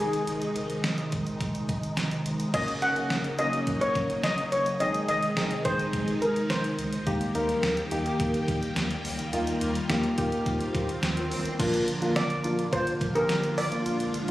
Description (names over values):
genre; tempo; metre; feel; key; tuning
synth-pop; 106 BPM; 4/4; straight; Ab major; A4 = 440 Hz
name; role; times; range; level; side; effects
steel pan; melody; 0.0-6.9, 12.2-14.3 s; Ab4 to Gb5; -28 LUFS; equal; tape echo
phased string machine; sustained chords; 0.0-14.3 s; C3 to G4; -31 LUFS; equal; ensemble chorus, phaser
round analog bass; bass; 0.0-14.3 s; Gb1 to Eb2; -37 LUFS; equal; none
detuned 8-bit digital drum machine; drums; 0.1-14.3 s; crash cymbal, hi-hat, kick drum, snare drum; -32 LUFS; equal; none
soft electric-piano-like synth keys; accompaniment; 2.5-14.3 s; Bb3 to Bb4; -30 LUFS; left 1 dB; chorus
swell; sound effects; 10.1-11.6 s; none; -38 LUFS; right 2 dB; none
room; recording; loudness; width
moderate lush hall reverb, RT60 1.9 s; recorded on a phone in the room, studio reverb; -25 LUFS; side -15 dB against mid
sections
0.0-2.5 A section; 2.5-11.6 B section; 11.6-14.3 C section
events
swell 10.1-11.6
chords
0.0 Ab; 2.5 Gb6; 4.8 Ab; 7.1 Eb; 11.6 Bb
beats
| 0.28 0.84 1.41 1.97 | 2.54 3.10 3.67 4.24 | 4.80 5.37 5.93 6.50 | 7.07 7.63 8.20 8.77 | 9.33 9.90 10.46 11.03 | 11.60 12.16 12.73 13.29 | 13.86